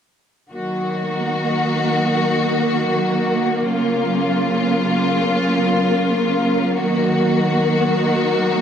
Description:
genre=trip hop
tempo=free time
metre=none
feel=none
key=Eb minor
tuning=A4 = 440 Hz
part: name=rich studio string section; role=sustained chords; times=0.5-8.6 s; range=Db3 to Gb4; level=-17 LUFS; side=equal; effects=none
part: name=flickering grainy texture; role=texture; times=0.8-8.6 s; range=Bb3 to Bb4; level=-22 LUFS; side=right 1 dB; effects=built-in reverb
room=moderate lush hall reverb, RT60 2.6 s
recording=none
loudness=-16 LUFS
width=side -8 dB against mid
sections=0.5-8.6 A section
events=none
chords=0.5 Ebm; 3.6 Gbmaj7; 6.8 Ebm

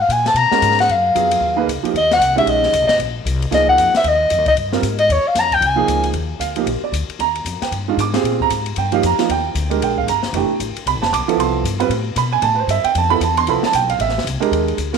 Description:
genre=modal jazz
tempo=229 BPM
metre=4/4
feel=swing 60% on 8ths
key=Eb major from 6.2 s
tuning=A4 = 442 Hz
part: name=breathy soprano saxophone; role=melody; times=0.0-6.1 s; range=Db5 to Bb5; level=-14 LUFS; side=left 2 dB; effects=none
part: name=upright bass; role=bass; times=0.0-15.0 s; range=F1 to Cb3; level=-23 LUFS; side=left 2 dB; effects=none
part: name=open jazz drum kit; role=drums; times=0.1-15.0 s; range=hi-hat, kick drum, ride cymbal, snare drum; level=-27 LUFS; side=left 9 dB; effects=none
part: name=warm upright piano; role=accompaniment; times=0.5-15.0 s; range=Eb3 to D6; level=-18 LUFS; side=right 9 dB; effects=none
room=moderate echo chamber reverb, RT60 1.4 s, studio reverb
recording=1960s-style stereo with parts hard left and right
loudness=-15 LUFS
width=side -6 dB against mid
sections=0.0-6.2 A section; 6.2-14.5 A section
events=soprano saxophone solo 0.0-6.2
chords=0.0 Db9sus4; 1.9 Eb9sus4; 6.2 Ebmaj9; 10.3 Fmaj9

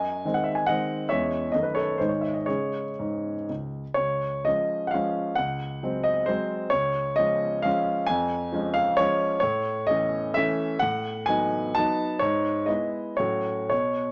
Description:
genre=classical, romantic triple-time dance for piano with dotted rhythms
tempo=106-146 BPM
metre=3/4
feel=rubato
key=C# minor, Db major from 4.0 s, E major from 9.4 s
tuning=A4 = 440 Hz
part: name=warm grand piano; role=solo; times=0.0-14.1 s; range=C#2 to A5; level=-26 LUFS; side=equal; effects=none
room=moderate stone room reverb, RT60 1.0 s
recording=none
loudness=-26 LUFS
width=mono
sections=0.0-4.0 A section; 4.0-14.1 B section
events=none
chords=0.0 G#7/F#; 1.1 C#m/E; 1.5 D#dim/F#; 2.0 G#5; 2.5 C#5; 4.0 Db; 5.4 Ab7/Db; 6.7 Db; 8.1 Db/F; 9.4 A; 10.8 B7/A; 12.2 E/G#; 13.2 F#m/A

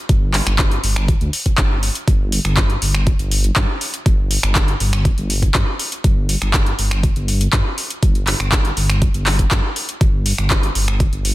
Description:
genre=progressive house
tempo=121 BPM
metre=4/4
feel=straight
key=unclear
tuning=A4 = 438 Hz
part: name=dark detuned saw bass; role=bass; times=0.1-11.3 s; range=G1 to G2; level=-19 LUFS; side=equal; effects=sidechain pumping
part: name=deep house drum kit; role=drums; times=0.1-11.3 s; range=finger snaps, handclaps, hi-hat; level=-20 LUFS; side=equal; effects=overdrive
part: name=electronic kick drum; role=drums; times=0.1-11.1 s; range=none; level=-16 LUFS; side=equal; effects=overdrive
room=little or no reverb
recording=dense, heavily limited modern master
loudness=-15 LUFS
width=side -17 dB against mid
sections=0.0-11.3 A section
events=none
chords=none

